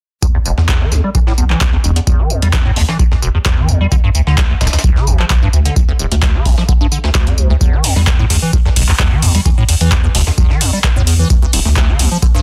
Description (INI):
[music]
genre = acid house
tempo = 130 BPM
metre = 4/4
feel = straight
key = unclear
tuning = A4 = 440 Hz
[part]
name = liquid acid bass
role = riff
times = 0.2-12.4 s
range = D1 to G3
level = -18 LUFS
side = equal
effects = phaser, tube saturation, analog chorus, sidechain pumping, digital delay
[part]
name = warm sub bass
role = bass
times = 0.2-12.1 s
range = A1 to F2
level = -17 LUFS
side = equal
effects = tube saturation, sidechain pumping
[part]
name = breakbeat sampler-style drum kit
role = drums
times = 0.2-12.4 s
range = hi-hat, snare drum, tambourine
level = -25 LUFS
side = equal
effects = high-pass filter on perc, high-pass filter on snare, high-pass filter on hats
[part]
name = electronic kick drum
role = drums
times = 0.2-12.3 s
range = none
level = -16 LUFS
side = equal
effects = none
[part]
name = electro analog drum machine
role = drums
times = 0.7-12.1 s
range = handclaps, hi-hat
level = -21 LUFS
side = equal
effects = none
[sound]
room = little or no reverb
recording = dense, heavily limited modern master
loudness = -13 LUFS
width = mono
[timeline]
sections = 0.2-12.4 A section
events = none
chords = 0.2 N.C.; 3.9 D7(no3); 7.6 N.C.